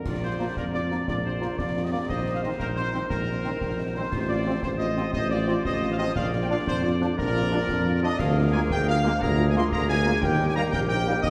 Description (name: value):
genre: military-style march for wind band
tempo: 118 BPM (dotted quarters)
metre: 6/8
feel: straight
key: Bb major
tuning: A4 = 440 Hz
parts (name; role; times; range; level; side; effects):
- mellow trumpet section; melody; 0.0-11.3 s; Bb4 to C6; -32 LUFS; equal; none
- warm woodwind section; second line; 0.0-11.3 s; Eb4 to D5; -34 LUFS; equal; none
- clear trombone section; sustained chords; 0.0-11.1 s; Eb3 to D4; -37 LUFS; equal; none
- warm tuba; bass; 0.0-11.3 s; A1 to F2; -29 LUFS; equal; none
- concert snare drum, clash cymbals and concert bass drum; drums; 0.1-11.3 s; none; -36 LUFS; equal; none
- mellow French horn section; accompaniment; 0.2-11.1 s; F3 to F4; -36 LUFS; equal; none
room: wet scoring stage reverb, RT60 1.7 s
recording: heard from further back in the room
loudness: -25 LUFS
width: mono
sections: 0.1-11.3 A section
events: none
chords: 0.1 Bb; 2.1 Cm7/Bb; 4.1 F7/A; 6.2 Bb; 8.2 Bb7/D; 10.2 Eb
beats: | 0.06 0.56 | 1.07 1.58 | 2.09 2.60 | 3.10 3.61 | 4.12 4.63 | 5.14 5.64 | 6.15 6.66 | 7.17 7.68 | 8.19 8.70 | 9.20 9.71 | 10.22 10.73 | 11.24